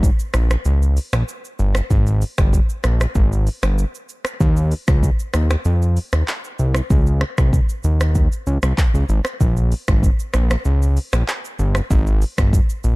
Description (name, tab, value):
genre	afrobeats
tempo	96 BPM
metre	4/4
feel	straight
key	Bb dorian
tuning	A4 = 440 Hz
part	fat analog bass	bass	0.0-13.0 s	G1 to F2	-16 LUFS	equal	none
part	afro-pop drum kit	drums	0.0-13.0 s	finger snaps, handclaps, hi-hat, kick drum, rim click, shaker	-19 LUFS	equal	none
room	digital ambience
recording	dark, warm production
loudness	-16 LUFS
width	side -24 dB against mid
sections	0.0-13.0 A section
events	none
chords	none